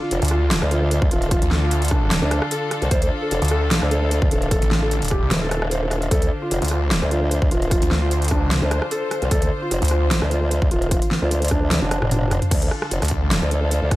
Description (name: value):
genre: heavy wobble dubstep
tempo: 150 BPM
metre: 4/4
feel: swing 54% on 16ths, half-time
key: D phrygian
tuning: A4 = 439 Hz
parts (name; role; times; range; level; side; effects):
- felt-muted upright piano; melody; 0.0-12.3 s; D4 to C5; -27 LUFS; right 1 dB; digital delay
- warm chamber string section; sustained chords; 0.0-14.0 s; D3 to C5; -28 LUFS; left 1 dB; sidechain pumping
- formant-sweep wobble bass; bass; 0.1-14.0 s; Eb1 to D2; -21 LUFS; equal; chorus, overdrive
- big-room dance drum kit; drums; 0.1-14.0 s; crash cymbal, hi-hat, rim click, snare drum, toms; -24 LUFS; equal; overdrive, small room ambience
- snarling distorted saw bass; bass; 0.2-10.2, 13.0-13.4 s; Eb1 to D2; -20 LUFS; equal; distortion, overdrive
- electronic kick drum; drums; 1.0-14.0 s; none; -21 LUFS; equal; overdrive, small room ambience
room: little or no reverb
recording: none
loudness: -18 LUFS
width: side -17 dB against mid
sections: 0.0-12.5 A section; 12.5-14.0 A section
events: drop 0.0-12.5, 12.5-14.0; drum fill 11.7-12.5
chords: 0.0 Dm